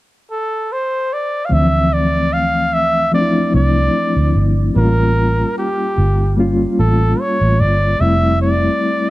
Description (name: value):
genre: lush 1970s-style soul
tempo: 74 BPM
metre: 4/4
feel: swing 54% on 16ths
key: unclear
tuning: A4 = 440 Hz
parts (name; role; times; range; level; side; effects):
- warm flugelhorn; melody; 0.3-9.1 s; G4 to F5; -18 LUFS; equal; none
- reed electric piano; accompaniment; 1.5-9.1 s; E3 to F4; -18 LUFS; left 1 dB; fast tremolo
- vintage muted fingered electric bass; bass; 1.5-8.7 s; F1 to D2; -15 LUFS; equal; none
room: light reverb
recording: none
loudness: -13 LUFS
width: side -17 dB against mid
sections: 0.0-1.5 A section; 1.5-9.1 B section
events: none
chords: 0.0 N.C.; 1.5 Dm9; 4.8 A7b9b13; 8.0 Fmaj9